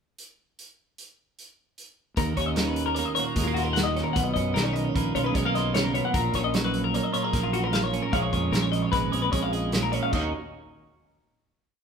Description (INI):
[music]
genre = math rock and midwest emo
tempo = 151 BPM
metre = 5/4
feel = straight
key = Eb minor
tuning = A4 = 440 Hz
[part]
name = loose indie drum kit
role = drums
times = 0.2-10.2 s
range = crash cymbal, hi-hat, kick drum, snare drum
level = -30 LUFS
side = equal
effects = none
[part]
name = twelve-string electric guitar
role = accompaniment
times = 2.2-10.3 s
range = Eb2 to Ab4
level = -28 LUFS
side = right 6 dB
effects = spring reverb
[part]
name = twelve-string electric guitar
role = arpeggios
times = 2.2-10.3 s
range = F4 to Gb5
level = -28 LUFS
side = left 5 dB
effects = none
[part]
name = fuzz fingered electric bass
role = bass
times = 2.2-10.3 s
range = Ab1 to F#2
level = -30 LUFS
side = left 1 dB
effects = overdrive
[sound]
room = moderate large studio reverb, RT60 1.3 s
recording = band playing live in one room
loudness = -23 LUFS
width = side -6 dB against mid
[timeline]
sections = 0.2-2.2 pickup bar; 2.2-10.1 A section; 10.1-11.8 final chord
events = none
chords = 0.2 N.C.; 2.2 Ebm7; 4.2 Bmaj9#11; 8.1 Bbm7; 10.1 Eb5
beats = | 0.19 0.58 0.98 1.38 1.78 | 2.18 2.57 2.97 3.37 3.76 | 4.16 4.56 4.95 5.35 5.75 | 6.14 6.54 6.94 7.33 7.73 | 8.13 8.53 8.93 9.33 9.73 | 10.13